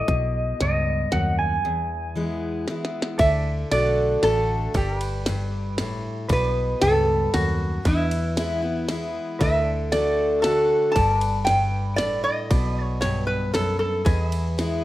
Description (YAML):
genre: honky-tonk and classic country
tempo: 116 BPM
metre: 3/4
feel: straight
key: D major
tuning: A4 = 440 Hz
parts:
  - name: pedal steel guitar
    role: second line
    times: 0.0-2.6 s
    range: Eb5 to G#5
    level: -26 LUFS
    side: equal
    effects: none
  - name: picked steel-string acoustic guitar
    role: accompaniment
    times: 0.0-14.8 s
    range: E2 to F#4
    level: -26 LUFS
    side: left 1 dB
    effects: none
  - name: vintage muted fingered electric bass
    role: bass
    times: 0.1-14.8 s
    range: G1 to E2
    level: -26 LUFS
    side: equal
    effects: none
  - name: glitchy drum kit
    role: drums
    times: 0.1-14.7 s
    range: hi-hat, kick drum, ride cymbal, snare drum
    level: -26 LUFS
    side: equal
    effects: none
  - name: lap resonator guitar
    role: melody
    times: 3.2-14.8 s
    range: E4 to A5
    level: -24 LUFS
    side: right 1 dB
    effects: none
  - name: pedal steel guitar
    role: sustained chords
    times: 3.2-14.8 s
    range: A4 to E5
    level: -35 LUFS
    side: right 2 dB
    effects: wide subtle chorus
room: light reverb, digital ambience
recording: rough home demo mix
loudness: -20 LUFS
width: side -15 dB against mid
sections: 0.0-3.2 A section; 3.2-14.8 B section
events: pedal steel guitar solo 0.0-3.2; break 1.6-3.2; drum fill 2.7-3.2, 14.6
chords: 0.1 B; 1.6 E; 3.2 D; 4.7 G; 6.3 B7; 7.9 E; 9.4 D; 11.0 G; 12.5 B; 14.1 E